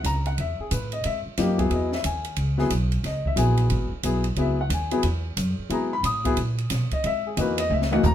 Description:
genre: modal jazz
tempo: 180 BPM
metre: 4/4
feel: swing 64% on 8ths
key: C# dorian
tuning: A4 = 440 Hz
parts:
  - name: warm baby grand piano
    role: accompaniment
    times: 0.0-8.1 s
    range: E3 to D#6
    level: -26 LUFS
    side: left 3 dB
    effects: none
  - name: upright bass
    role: bass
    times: 0.0-8.1 s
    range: G#1 to B2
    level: -25 LUFS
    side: right 1 dB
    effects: none
  - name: open jazz drum kit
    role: drums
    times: 0.0-8.1 s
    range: hi-hat, kick drum, ride cymbal, snare drum, toms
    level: -30 LUFS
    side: right 1 dB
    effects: none
room: moderate studio reverb, RT60 0.7 s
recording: minimal, uncompressed stereo recording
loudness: -22 LUFS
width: side -10 dB against mid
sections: 0.0-8.1 A section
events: drum fill 7.7-8.1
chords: 0.0 C#m9

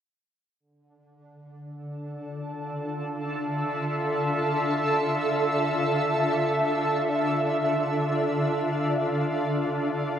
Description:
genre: ambient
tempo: free time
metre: none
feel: none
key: D minor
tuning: A4 = 438 Hz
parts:
  - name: shimmering ambient pad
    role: solo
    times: 1.7-10.2 s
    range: D3 to E5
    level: -24 LUFS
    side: equal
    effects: chorus, built-in reverb
room: wet cathedral reverb, RT60 6.7 s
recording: in a vast, echoing space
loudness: -24 LUFS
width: side -9 dB against mid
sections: 0.6-10.2 A section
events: none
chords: 0.6 Dmadd9

